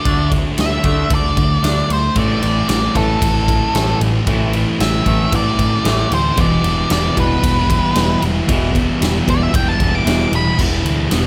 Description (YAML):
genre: quiet-loud alternative rock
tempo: 114 BPM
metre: 4/4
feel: straight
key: A dorian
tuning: A4 = 439 Hz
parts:
  - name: octave-fuzz lead guitar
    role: melody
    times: 0.0-10.6 s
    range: A4 to D6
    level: -22 LUFS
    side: equal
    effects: distortion, slapback echo
  - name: twangy electric guitar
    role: arpeggios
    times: 0.0-11.3 s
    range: E2 to D4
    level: -26 LUFS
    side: equal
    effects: spring reverb, slapback echo
  - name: thick fuzz guitar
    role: riff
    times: 0.0-11.3 s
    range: A2 to F#4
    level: -24 LUFS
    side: equal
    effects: distortion
  - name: growling picked electric bass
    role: bass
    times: 0.1-11.3 s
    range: E1 to D2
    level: -23 LUFS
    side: equal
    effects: overdrive
  - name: huge arena drum kit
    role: drums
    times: 0.1-11.2 s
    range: crash cymbal, kick drum, ride cymbal, snare drum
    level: -22 LUFS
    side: equal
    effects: none
  - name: thick fuzz guitar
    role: riff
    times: 2.2-11.3 s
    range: E2 to A3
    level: -24 LUFS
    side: equal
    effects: distortion
room: little or no reverb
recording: none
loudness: -16 LUFS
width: mono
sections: 0.0-10.6 A section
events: lead electric guitar solo 0.0-10.6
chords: 0.0 D; 2.2 Am; 6.4 Em